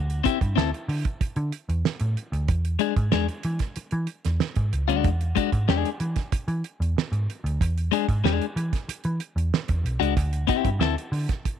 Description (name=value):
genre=funk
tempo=94 BPM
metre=4/4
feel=straight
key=E mixolydian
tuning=A4 = 440 Hz
part: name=vintage muted picked electric bass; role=bass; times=0.0-11.3 s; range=B1 to E3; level=-24 LUFS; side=right 1 dB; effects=none
part: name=damped 70s drum kit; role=drums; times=0.1-11.6 s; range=hi-hat, kick drum, snare drum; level=-27 LUFS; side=right 4 dB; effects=none
part: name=clean electric guitar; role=accompaniment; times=0.2-10.9 s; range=G#3 to A4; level=-25 LUFS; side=left 13 dB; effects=none
room=light reverb, small room reverb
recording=1960s-style stereo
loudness=-23 LUFS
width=side -9 dB against mid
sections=0.0-11.6 A section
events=none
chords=0.0 D9sus4; 2.5 E7; 10.2 D9sus4